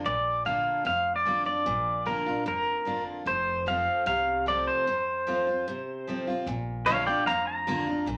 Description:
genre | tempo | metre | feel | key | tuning
honky-tonk and classic country | 150 BPM | 4/4 | straight | Bb major | A4 = 443 Hz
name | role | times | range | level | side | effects
picked steel-string acoustic guitar | accompaniment | 0.0-8.2 s | F2 to F4 | -35 LUFS | equal | none
pedal steel guitar | second line | 0.1-8.2 s | Bb4 to Bb5 | -29 LUFS | equal | none
upright bass | bass | 0.1-8.2 s | F1 to C2 | -42 LUFS | equal | none
room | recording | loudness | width
wet studio reverb, RT60 0.6 s | none | -28 LUFS | mono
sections
0.1-6.5 A section; 6.5-8.2 B section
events
pedal steel guitar solo 0.1-6.5, 6.5-8.2; break 4.9-6.5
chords
0.1 Bb; 3.3 F; 6.5 Bb

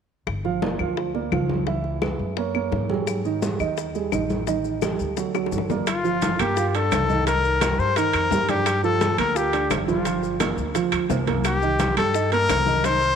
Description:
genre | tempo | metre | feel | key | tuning
Afro-Cuban jazz | 172 BPM | 4/4 | straight | G minor | A4 = 443 Hz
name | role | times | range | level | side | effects
upright bass | bass | 0.3-13.2 s | G1 to G#2 | -28 LUFS | left 1 dB | none
bongos | percussion | 0.3-13.2 s | none | -32 LUFS | left 13 dB | none
claves | percussion | 0.3-12.7 s | none | -35 LUFS | left 13 dB | none
congas | percussion | 0.3-13.2 s | none | -30 LUFS | left 2 dB | none
dark grand piano | accompaniment | 0.5-13.1 s | Eb3 to F5 | -26 LUFS | right 9 dB | none
maracas | percussion | 3.1-13.2 s | none | -41 LUFS | left 14 dB | none
clear trumpet | melody | 5.9-13.2 s | F4 to C5 | -22 LUFS | left 4 dB | none
timbales | percussion | 5.9-13.0 s | none | -30 LUFS | right 12 dB | none
room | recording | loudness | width
moderate plate reverb, RT60 3.7 s | 1960s-style stereo with parts hard left and right | -20 LUFS | side -7 dB against mid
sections
0.3-5.9 A section; 5.9-13.2 B section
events
drum fill 5.3-5.9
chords
0.3 Gm7; 1.7 C#m7; 2.4 F#add9; 3.1 Ab5; 4.5 Ebmaj7#11/A; 5.2 D; 5.9 Gm7; 7.3 Cm7; 8.7 Gm7; 11.4 Cm7

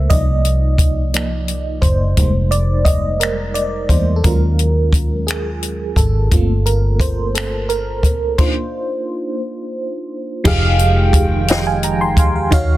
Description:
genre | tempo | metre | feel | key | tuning
slow six-eight R&B | 58 BPM (dotted quarters) | 6/8 | straight | unclear | A4 = 440 Hz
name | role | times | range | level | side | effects
FM electric piano with tremolo | accompaniment | 0.0-12.8 s | Eb3 to C6 | -20 LUFS | right 2 dB | phaser
vintage muted fingered electric bass | bass | 0.0-12.8 s | F1 to E2 | -17 LUFS | equal | none
compact cocktail drum kit | drums | 0.1-12.7 s | crash cymbal, finger snaps, hi-hat, kick drum, snare drum | -16 LUFS | equal | soft clipping on snare
hollow soft pad | sustained chords | 10.8-12.8 s | Db3 to G5 | -24 LUFS | equal | chorus
room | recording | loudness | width
small room ambience | dense, heavily limited modern master | -14 LUFS | side -15 dB against mid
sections
0.0-10.4 A section; 10.4-12.8 B section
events
FM electric piano solo 0.0-10.4; stop 8.4-10.4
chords
0.1 Cm11; 2.2 Fm11; 4.2 Ebm11; 6.3 Gm11; 8.4 Cm11; 10.4 Fm9

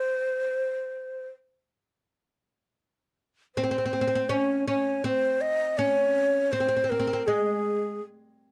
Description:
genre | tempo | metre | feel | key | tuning
Arabic maqam ensemble | 81 BPM | 4/4 | straight | C maqam kurd from 3.6 s | A4 = 440 Hz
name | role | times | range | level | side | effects
breathy ney | melody | 0.0-8.0 s | Ab4 to Eb5 | -28 LUFS | equal | none
oud | second line | 3.6-8.0 s | Ab3 to Db4 | -31 LUFS | equal | none
room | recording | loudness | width
light reverb | dark, warm production | -26 LUFS | mono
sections
0.0-3.6 A section; 3.6-8.5 B section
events
none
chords
none

